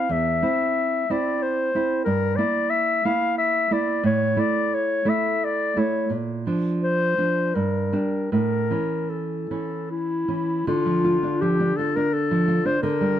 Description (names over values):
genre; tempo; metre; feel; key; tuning
romantic duo for clarinet and classical guitar; 76-94 BPM; 3/4; rubato; D minor; A4 = 440 Hz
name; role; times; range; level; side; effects
mellow clarinet; melody; 0.0-13.2 s; E4 to F5; -23 LUFS; left 4 dB; plate reverb
nylon-string guitar; accompaniment; 0.0-13.2 s; E2 to F4; -24 LUFS; right 3 dB; none
room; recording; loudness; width
moderate studio reverb, RT60 0.9 s; dark, warm production; -20 LUFS; side -10 dB against mid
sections
0.0-10.7 A section; 10.7-13.2 B section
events
none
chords
0.1 C/E; 2.1 Edim/G; 4.1 A5; 6.1 Bb; 7.6 Gm; 8.3 A; 10.7 Dm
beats
| 0.10 0.77 1.42 | 2.06 2.72 3.39 | 4.05 4.73 5.42 | 6.12 6.83 7.56 | 8.33 9.11 9.90 | 10.68 11.42 12.13 | 12.83